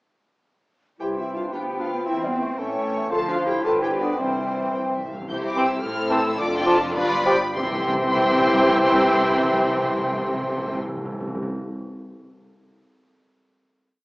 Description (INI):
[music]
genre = quick classical-period movement for symphony orchestra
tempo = 97-116 BPM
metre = 2/4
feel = rubato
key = C major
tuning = A4 = 440 Hz
[part]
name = warm studio violin section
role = melody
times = 1.0-10.8 s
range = E5 to G6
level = -30 LUFS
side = equal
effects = none
[part]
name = dark cor anglais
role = second line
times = 1.0-10.8 s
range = A4 to D5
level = -28 LUFS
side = equal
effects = none
[part]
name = flute section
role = second line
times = 1.0-10.8 s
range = F5 to A5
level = -27 LUFS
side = equal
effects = none
[part]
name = rich chamber violin section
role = second line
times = 1.0-10.8 s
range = E4 to A5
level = -31 LUFS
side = left 1 dB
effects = none
[part]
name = warm clarinet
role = second line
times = 1.0-10.8 s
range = G3 to G4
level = -28 LUFS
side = equal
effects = none
[part]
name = mellow bassoon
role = accompaniment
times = 1.0-10.8 s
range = E3 to F3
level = -29 LUFS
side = equal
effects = none
[part]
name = rich chamber viola section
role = accompaniment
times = 1.0-10.8 s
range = B3 to B4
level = -30 LUFS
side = equal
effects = none
[part]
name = mellow French horn section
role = sustained chords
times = 1.0-10.8 s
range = B3 to A4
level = -27 LUFS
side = left 1 dB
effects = none
[part]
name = rich studio cello section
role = bass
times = 1.0-10.8 s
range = F2 to C4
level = -32 LUFS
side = equal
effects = none
[part]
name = rich studio double bass section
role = bass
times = 1.0-10.8 s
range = F1 to E2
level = -38 LUFS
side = right 1 dB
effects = none
[part]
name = timpani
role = percussion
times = 4.2-11.5 s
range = C3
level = -30 LUFS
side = equal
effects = none
[sound]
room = wet concert hall reverb, RT60 1.9 s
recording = worn, warbling old tape, cassette tape, warbly pitch drift, small speaker sound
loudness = -20 LUFS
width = side -23 dB against mid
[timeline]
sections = 1.0-5.3 A section; 5.3-7.6 coda; 7.6-10.0 final chord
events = timpani fill 4.2-5.3; slowing down 4.7-7.6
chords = 1.0 C; 1.5 G7/D; 2.1 C/E; 2.6 A7; 3.1 Dm7; 3.6 G7; 4.2 C; 5.8 Am; 6.4 Dm/F; 7.0 G7; 7.6 C